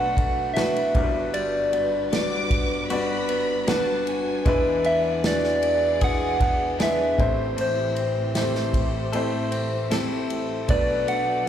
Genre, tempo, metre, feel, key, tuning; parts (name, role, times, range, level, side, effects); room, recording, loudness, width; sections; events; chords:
pop ballad; 77 BPM; 4/4; straight; G major; A4 = 440 Hz
soft struck synth lead; melody; 0.0-11.5 s; C5 to F#5; -24 LUFS; equal; chorus, slapback echo
clear grand piano; accompaniment; 0.0-11.5 s; G1 to D5; -26 LUFS; left 1 dB
warm studio string section; sustained chords; 0.0-11.5 s; E2 to D5; -32 LUFS; right 1 dB
direct-recorded clean electric guitar; arpeggios; 0.0-11.5 s; A2 to A4; -32 LUFS; left 1 dB; spring reverb, slapback echo
unplugged drum kit; drums; 0.2-11.3 s; kick drum, ride cymbal, snare drum; -27 LUFS; right 1 dB
rich studio violin section; second line; 2.1-4.7 s; Ab5 to D6; -31 LUFS; right 1 dB; slapback echo
light reverb, small room reverb; live gig heard through the venue's PA, club reverb; -21 LUFS; side -10 dB against mid
0.0-11.5 A section
0.0 Bm7; 0.9 Gmaj7; 4.5 E7; 7.2 Am7; 10.7 Bm7